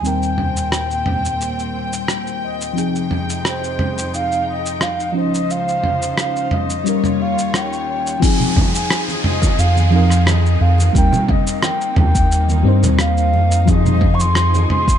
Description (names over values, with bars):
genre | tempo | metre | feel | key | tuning
sunset chillout | 88 BPM | 4/4 | straight | F minor | A4 = 441 Hz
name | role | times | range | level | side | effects
mellow baroque flute | melody | 0.0-15.0 s | C5 to Db6 | -22 LUFS | equal | tape echo
mellow FM electric piano | accompaniment | 0.0-15.0 s | Eb2 to C5 | -22 LUFS | moving between left 9 dB and right 4 dB | chorus, phaser, auto-pan, cassette tape
rich studio string section | sustained chords | 0.0-15.0 s | Db2 to Ab5 | -27 LUFS | equal | none
dusty soul sampler-style drum kit | drums | 0.0-15.0 s | crash cymbal, rim click, shaker, toms | -21 LUFS | right 1 dB | none
electronic kick drum | drums | 8.2-15.0 s | none | -17 LUFS | equal | none
congas | percussion | 8.2-14.7 s | none | -25 LUFS | right 4 dB | none
downlifter | sound effects | 8.2-13.7 s | none | -28 LUFS | equal | none
round analog bass | bass | 9.6-14.7 s | Eb2 to G2 | -14 LUFS | equal | none
room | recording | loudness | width
light reverb | dark, warm production, nothing above 11.0 kHz | -14 LUFS | side -9 dB against mid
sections
0.0-8.2 A section; 8.2-15.0 B section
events
none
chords
0.0 Cm7/Eb; 2.8 Fm7; 5.2 Dbmaj9; 6.9 Eb7; 8.2 Fm7; 10.9 Cm7/Eb; 13.7 Fm7